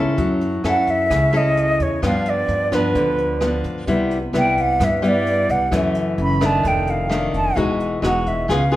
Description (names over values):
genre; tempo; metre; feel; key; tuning
bossa nova; 130 BPM; 4/4; straight; unclear; A4 = 439 Hz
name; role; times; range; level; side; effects
nylon-string guitar; accompaniment; 0.0-8.8 s; F2 to A4; -20 LUFS; left 2 dB; none
upright bass; bass; 0.0-8.8 s; E1 to G2; -24 LUFS; equal; none
jazz brush drum kit; drums; 0.2-8.8 s; hi-hat, kick drum, rim click; -29 LUFS; right 1 dB; none
silver concert flute; melody; 0.7-8.8 s; B4 to B5; -20 LUFS; right 2 dB; none
room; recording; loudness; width
moderate recital hall reverb, RT60 1.4 s; recorded in a church or concert hall; -16 LUFS; side -15 dB against mid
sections
0.0-8.8 A section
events
none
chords
0.2 F#m7; 2.0 G7; 3.9 Cmaj7; 5.7 F#m7; 6.6 F6; 7.6 Emaj9